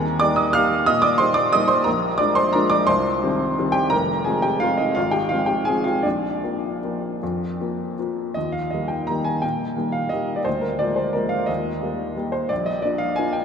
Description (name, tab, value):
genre	classical, piano waltz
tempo	149-187 BPM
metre	3/4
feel	rubato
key	Eb major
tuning	A4 = 445 Hz
part	warm upright piano	solo	0.0-13.4 s	F1 to F6	-19 LUFS	equal	none
room	wet cathedral reverb, RT60 5.4 s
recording	in a vast, echoing space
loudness	-19 LUFS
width	side -7 dB against mid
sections	0.0-8.4 A section; 8.4-13.4 B section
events	none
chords	0.0 Eb; 1.9 Bb7; 2.9 Cm; 3.9 Fm; 5.0 Fm/Ab; 6.0 Bb; 8.4 Eb; 10.5 Bb7/D; 11.5 Eb; 12.5 Bb